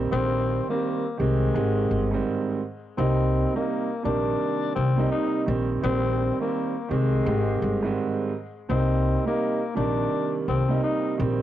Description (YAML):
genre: hip hop, boom-bap hip-hop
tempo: 84 BPM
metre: 4/4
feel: swing 63% on 16ths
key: unclear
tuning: A4 = 440 Hz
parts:
  - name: dark concert grand piano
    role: accompaniment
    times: 0.0-11.4 s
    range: Ab2 to G4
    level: -26 LUFS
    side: right 5 dB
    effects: high-pass filter, low-pass filter, cassette tape
  - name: upright bass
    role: bass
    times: 0.0-11.4 s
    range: G1 to C2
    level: -25 LUFS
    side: left 1 dB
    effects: none
  - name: growling tenor saxophone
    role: melody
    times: 0.1-11.2 s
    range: Ab3 to Eb4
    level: -29 LUFS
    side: left 6 dB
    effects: high-pass filter, low-pass filter, tape echo
room: light reverb, small room ambience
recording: home recording on cassette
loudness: -22 LUFS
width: side -12 dB against mid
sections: 0.0-11.4 A section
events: none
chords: 0.0 Eb6/Bb; 1.5 Abmaj7; 3.0 Eb6/Bb; 7.3 Abmaj7; 8.7 Eb6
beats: | 0.12 0.83 1.55 2.26 | 2.97 3.69 4.40 5.12 | 5.83 6.55 7.26 7.97 | 8.69 9.40 10.12 10.83